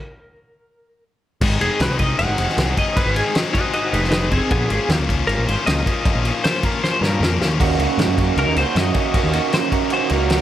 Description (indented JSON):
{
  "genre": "indie rock",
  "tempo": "156 BPM",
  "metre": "4/4",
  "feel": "straight",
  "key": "Ab major",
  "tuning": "A4 = 440 Hz",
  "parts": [
    { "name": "twelve-string electric guitar", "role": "melody", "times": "0.0-10.4 s", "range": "Cb4 to Gb5", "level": "-23 LUFS", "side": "equal", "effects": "tremolo, slapback echo" },
    { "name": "hollow soft pad", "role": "sustained chords", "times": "1.4-10.4 s", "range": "Bb4 to Eb6", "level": "-34 LUFS", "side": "equal", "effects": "none" },
    { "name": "high-gain distorted guitar", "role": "riff", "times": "1.4-10.4 s", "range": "Ab2 to Ab4", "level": "-24 LUFS", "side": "left 8 dB", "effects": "distortion" },
    { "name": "growling picked electric bass", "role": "bass", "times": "1.4-10.4 s", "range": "F1 to Ab2", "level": "-21 LUFS", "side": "equal", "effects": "overdrive" },
    { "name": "loose indie drum kit", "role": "drums", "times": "1.4-10.4 s", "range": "crash cymbal, kick drum, ride cymbal, snare drum", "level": "-21 LUFS", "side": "equal", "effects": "none" },
    { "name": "electric guitar through a small old amp", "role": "riff", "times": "7.6-10.4 s", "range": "Bb3 to Gb4", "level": "-21 LUFS", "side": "right 14 dB", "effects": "lush chorus" }
  ],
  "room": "little or no reverb",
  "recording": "none",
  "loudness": "-16 LUFS",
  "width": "side -12 dB against mid",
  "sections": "0.0-1.4 A section; 1.4-10.4 B section",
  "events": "stop 0.0-1.4; clean electric guitar solo 1.4-10.4; drum fill 6.8-7.6",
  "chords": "0.0 N.C.; 1.4 Ab; 4.5 Bbm7; 7.6 Ebm7"
}